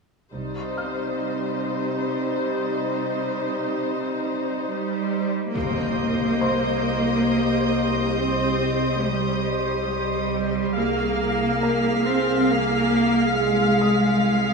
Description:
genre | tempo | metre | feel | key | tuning
cinematic, suspense film score | 69 BPM | 3/4 | straight | C minor | A4 = 440 Hz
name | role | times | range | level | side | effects
warm studio violin section | melody | 0.3-14.5 s | C5 to F5 | -31 LUFS | left 2 dB | none
warm studio viola section | accompaniment | 0.3-14.5 s | G3 to F5 | -26 LUFS | right 1 dB | none
clear studio cello section | bass | 0.3-14.5 s | C3 to C4 | -24 LUFS | equal | none
rich studio double bass section | bass | 0.3-1.2, 5.6-14.5 s | C2 | -29 LUFS | right 1 dB | none
felt-muted upright piano | texture | 0.8-14.5 s | Bb4 to F6 | -33 LUFS | left 3 dB | none
impact | sound effects | 5.5-8.2 s | none | -32 LUFS | left 3 dB | none
clear studio violin section | texture | 5.5-14.5 s | Eb6 to B6 | -34 LUFS | left 2 dB | none
room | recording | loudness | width
moderate scoring stage reverb, RT60 1.6 s | none | -20 LUFS | side -4 dB against mid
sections
0.3-5.5 A section; 5.5-14.5 B section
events
impact 5.5-8.2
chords
0.3 Cm; 10.8 Db/C (rootless)

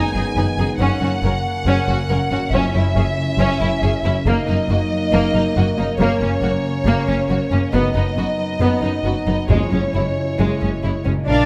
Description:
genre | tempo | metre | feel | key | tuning
cinematic, heroic adventure film score | 138 BPM | 4/4 | straight | F# mixolydian | A4 = 440 Hz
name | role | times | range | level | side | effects
rich symphonic violin section | melody | 0.0-11.5 s | C#5 to G#5 | -27 LUFS | equal | none
rich symphonic violin section | second line | 0.0-11.5 s | G#3 to B4 | -28 LUFS | equal | none
warm symphonic viola section | accompaniment | 0.0-11.5 s | G#3 to E#4 | -28 LUFS | equal | none
mellow French horn section | sustained chords | 0.0-11.1 s | G#3 to E4 | -28 LUFS | equal | none
concert harp | arpeggios | 0.0-11.5 s | F#2 to E#4 | -28 LUFS | equal | none
clear symphonic double bass section | bass | 0.1-11.5 s | F#1 to A#1 | -25 LUFS | equal | none
rich symphonic cello section | bass | 0.1-11.5 s | F#2 to D4 | -25 LUFS | equal | none
timpani | percussion | 2.5-3.1, 9.5-10.1 s | F#2 | -26 LUFS | equal | none
room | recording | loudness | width
moderate recital hall reverb, RT60 1.8 s | close, detailed microphones | -19 LUFS | mono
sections
0.0-11.3 A section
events
build-up 0.0-11.3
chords
0.0 G#m/F#; 0.8 F#; 2.5 C#m/F#; 4.3 D#m/F#; 6.0 F#; 7.7 B/F#; 9.5 C#m/F#

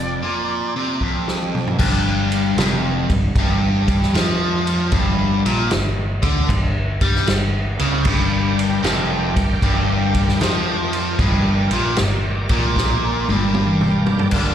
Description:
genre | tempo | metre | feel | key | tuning
blues rock power trio and southern rock | 77 BPM | 4/4 | swing 67% on 8ths | G minor | A4 = 440 Hz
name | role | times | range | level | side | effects
warm harmonica | melody | 0.0-1.0 s | D5 | -31 LUFS | left 1 dB | overdrive, slapback echo, analog delay
biting overdriven guitar | riff | 0.0-14.5 s | F2 to G3 | -20 LUFS | left 1 dB | slapback echo
vintage muted fingered electric bass | bass | 0.0-14.5 s | F1 to G2 | -22 LUFS | equal | none
vintage drum kit | drums | 1.0-14.5 s | crash cymbal, kick drum, ride cymbal, snare drum, toms | -21 LUFS | equal | none
bright tonewheel organ | sustained chords | 7.7-14.5 s | G3 to G5 | -28 LUFS | right 3 dB | slow rotary speaker, chorus vibrato
room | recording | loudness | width
little or no reverb | live gig heard through the venue's PA, recital hall reverb, lossy compression artefacts | -16 LUFS | side -10 dB against mid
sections
0.0-1.8 A section; 1.8-14.3 B section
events
drum fill 1.0-1.8, 12.8-14.3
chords
0.0 Gm (rootless); 1.8 Gm

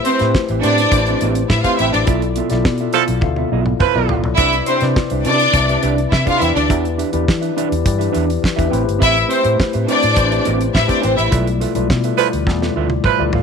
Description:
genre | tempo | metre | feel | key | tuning
disco | 104 BPM | 4/4 | straight | unclear | A4 = 441 Hz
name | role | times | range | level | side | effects
clear studio string section | second line | 0.0-11.3 s | C4 to F5 | -16 LUFS | equal | none
mellow tine electric piano | accompaniment | 0.0-13.4 s | B2 to F5 | -21 LUFS | left 11 dB | medium stereo tremolo
damped 70s drum kit | drums | 0.0-13.4 s | hi-hat, kick drum, snare drum, toms | -20 LUFS | right 1 dB | none
mellow electric guitar | accompaniment | 0.1-13.4 s | B3 to G5 | -23 LUFS | right 16 dB | none
vintage muted fingered electric bass | bass | 0.2-13.4 s | G1 to E3 | -20 LUFS | equal | none
warm horn section | stabs | 2.9-4.2, 12.2-13.2 s | F3 to B4 | -17 LUFS | right 15 dB | none
room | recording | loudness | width
light reverb, small room ambience | 1960s-style stereo with parts hard left and right | -14 LUFS | side -6 dB against mid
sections
0.0-13.4 A section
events
band accent 2.1-4.4, 11.3-13.4; drum fill 3.2-4.4, 12.5-13.4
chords
0.0 Am9; 2.1 Dm69; 4.4 Cmaj9; 6.4 Em7; 8.7 Am9; 11.3 G13/B

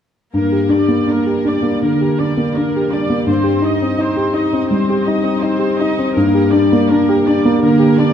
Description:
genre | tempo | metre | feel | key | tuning
classical, romantic movement for piano and orchestra | 78-85 BPM | 4/4 | rubato | G minor | A4 = 445 Hz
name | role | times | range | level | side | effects
warm concert grand piano | melody | 0.3-8.1 s | G2 to G4 | -13 LUFS | equal | none
warm studio viola section | accompaniment | 0.3-8.1 s | G3 to Eb5 | -21 LUFS | right 1 dB | none
room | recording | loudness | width
wet scoring stage reverb, RT60 1.9 s | none | -13 LUFS | side -9 dB against mid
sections
0.3-8.1 A section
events
none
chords
0.3 Gm; 3.3 Cm/G; 6.2 Gm

